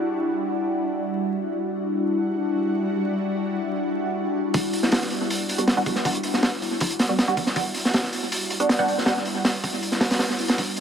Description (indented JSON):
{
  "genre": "drum and bass, jungle",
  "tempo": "159 BPM",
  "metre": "4/4",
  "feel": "straight",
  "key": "E minor",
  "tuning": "A4 = 440 Hz",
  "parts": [
    { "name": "ethereal airy pad", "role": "sustained chords", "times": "0.0-10.8 s", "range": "G3 to F#4", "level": "-25 LUFS", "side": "left 1 dB", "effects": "ensemble chorus, built-in reverb, phaser" },
    { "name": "warm 808-style bass", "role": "bass", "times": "4.5-10.8 s", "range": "none", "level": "barely audible", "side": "none", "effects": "none" },
    { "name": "crunchy breakbeat drum kit", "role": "drums", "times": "4.5-10.8 s", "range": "hi-hat, kick drum, snare drum", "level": "-22 LUFS", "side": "right 1 dB", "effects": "high-pass filter on kick, high-pass filter on hats, high-pass filter on snare, high-pass filter on room, tape echo" },
    { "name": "filtered dub chord stab", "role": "stabs", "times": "5.6-8.9 s", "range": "G3 to F#4", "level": "-26 LUFS", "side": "right 2 dB", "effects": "phaser, lush chorus, tape echo" }
  ],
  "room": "wet echo chamber reverb, RT60 1.4 s, small room reverb",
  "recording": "echo-heavy mix, vinyl crackle",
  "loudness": "-21 LUFS",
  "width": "side -8 dB against mid",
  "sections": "0.0-4.5 A section; 4.5-10.8 B section",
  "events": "filter sweep on ambient pad 0.0-4.5, 4.5-10.8; build-up 4.5-10.8",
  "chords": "0.0 Em9",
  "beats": "| 0.01 0.39 0.77 1.15 | 1.52 1.90 2.28 2.65 | 3.03 3.41 3.79 4.16 | 4.54 4.92 5.30 5.67 | 6.05 6.43 6.81 7.18 | 7.56 7.94 8.31 8.69 | 9.07 9.45 9.82 10.20 | 10.58"
}